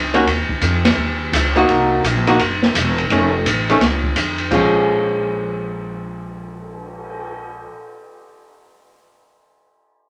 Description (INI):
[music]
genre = jazz, small-group swing and bop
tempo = 169 BPM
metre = 4/4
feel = swing 64% on 8ths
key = Bb minor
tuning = A4 = 440 Hz
[part]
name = upright bass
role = bass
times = 0.0-7.6 s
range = E1 to F2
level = -25 LUFS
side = equal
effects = none
[part]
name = archtop guitar, miked and amplified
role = accompaniment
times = 0.1-7.7 s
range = Eb3 to Gb4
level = -20 LUFS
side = equal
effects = none
[part]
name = open jazz drum kit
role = drums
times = 0.1-7.3 s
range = crash cymbal, cymbal swell, hi-hat, kick drum, ride cymbal, snare drum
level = -22 LUFS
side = equal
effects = none
[sound]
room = wet studio reverb, RT60 0.6 s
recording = none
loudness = -17 LUFS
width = mono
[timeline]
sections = 0.0-4.5 A section; 4.5-7.4 B section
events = none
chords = 0.3 Eb7(no3); 1.7 Cm7b5; 3.1 F7b13; 4.5 Bbm7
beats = | 0.26 0.61 0.97 1.32 | 1.68 2.03 2.39 2.74 | 3.10 3.45 3.81 4.16 | 4.52 4.87 5.23 5.58 | 5.94 6.29 6.65 7.00